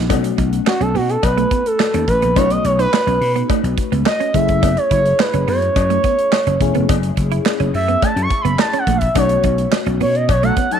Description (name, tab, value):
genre	early-eighties boogie funk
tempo	106 BPM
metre	4/4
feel	straight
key	unclear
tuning	A4 = 440 Hz
part	FM electric piano with soft pad layer	accompaniment	0.0-10.8 s	A3 to G#4	-24 LUFS	left 16 dB	chorus, phaser
part	clean electric guitar	riff	0.0-10.7 s	A3 to E4	-23 LUFS	right 14 dB	analog chorus
part	vintage slap bass	bass	0.0-10.5 s	E1 to B2	-19 LUFS	left 1 dB	none
part	modern studio drum kit	drums	0.1-10.8 s	handclaps, hi-hat, kick drum, snare drum	-20 LUFS	right 2 dB	none
part	cowbell	percussion	0.1-10.4 s	none	-26 LUFS	left 16 dB	none
part	expressive portamento lead	melody	0.7-10.8 s	F#4 to C#6	-18 LUFS	right 1 dB	chorus
part	analog synth brass	second line	10.4-10.8 s	F#3 to A4	-23 LUFS	left 16 dB	chorus
room	light reverb, studio ambience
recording	1960s-style stereo with parts hard left and right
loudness	-14 LUFS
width	side -8 dB against mid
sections	0.1-10.8 A section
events	analog synth lead solo 0.1-10.8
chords	0.1 B9; 4.3 F#m9; 9.2 B9